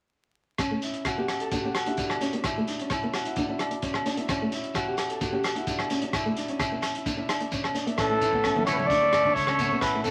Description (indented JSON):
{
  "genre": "highlife guitar band",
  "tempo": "130 BPM",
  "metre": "4/4",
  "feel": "straight",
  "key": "A mixolydian",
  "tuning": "A4 = 440 Hz",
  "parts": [
    { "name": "Celtic harp", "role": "arpeggios", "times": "0.6-10.1 s", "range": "B3 to A4", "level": "-34 LUFS", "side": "equal", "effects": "none" },
    { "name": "warm soul drum kit", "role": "drums", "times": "0.6-10.1 s", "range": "hi-hat, kick drum, rim click", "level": "-35 LUFS", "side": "equal", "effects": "none" },
    { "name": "agogo bells", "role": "percussion", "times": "0.6-9.9 s", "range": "none", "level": "-37 LUFS", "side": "equal", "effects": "none" },
    { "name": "shekere", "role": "percussion", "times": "0.6-10.1 s", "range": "none", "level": "-38 LUFS", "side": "equal", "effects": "none" },
    { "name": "nylon-string guitar", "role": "accompaniment", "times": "0.7-10.1 s", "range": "A3 to D4", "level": "-35 LUFS", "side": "equal", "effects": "none" },
    { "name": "breathy trumpet", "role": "melody", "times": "8.0-10.1 s", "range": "A4 to D5", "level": "-26 LUFS", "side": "equal", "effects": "none" },
    { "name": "edgy tenor saxophone", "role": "second line", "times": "8.0-10.1 s", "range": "E3 to A3", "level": "-32 LUFS", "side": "equal", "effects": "none" },
    { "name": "fingered electric bass", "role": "bass", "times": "8.0-10.1 s", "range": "A1 to A2", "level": "-39 LUFS", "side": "equal", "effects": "none" },
    { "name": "congas", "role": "percussion", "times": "8.6-9.4 s", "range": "none", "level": "-39 LUFS", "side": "equal", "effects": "none" }
  ],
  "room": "moderate studio reverb, RT60 0.7 s",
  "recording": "vinyl crackle",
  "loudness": "-27 LUFS",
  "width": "mono",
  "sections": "0.6-8.0 A section; 8.0-10.1 B section",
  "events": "none",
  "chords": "0.6 A; 1.5 Dsus2; 2.4 A; 3.4 Bmadd9 (rootless); 4.3 A; 5.2 Dsus2; 6.1 A; 7.1 Bmadd9 (rootless); 8.0 A; 8.9 D5",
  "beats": "| 0.59 1.05 1.52 1.98 | 2.44 2.91 3.37 3.83 | 4.29 4.75 5.21 5.68 | 6.14 6.60 7.06 7.52 | 7.98 8.44 8.90 9.36 | 9.82"
}